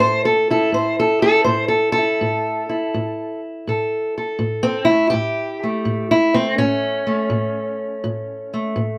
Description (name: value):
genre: acoustic country blues, solo or duo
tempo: 82 BPM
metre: 4/4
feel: swing 67% on 8ths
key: A major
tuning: A4 = 439 Hz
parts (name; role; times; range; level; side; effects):
- fingerpicked steel-string acoustic guitar; solo; 0.0-9.0 s; A2 to C5; -20 LUFS; equal; none
room: light reverb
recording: close, detailed microphones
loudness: -20 LUFS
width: mono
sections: 0.0-9.0 A section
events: steel-string acoustic guitar solo 0.0-9.0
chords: 0.0 A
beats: 0.00 0.73 1.46 | 2.19 2.92 3.65 4.38 | 5.11 5.84 6.57 7.30 | 8.04 8.77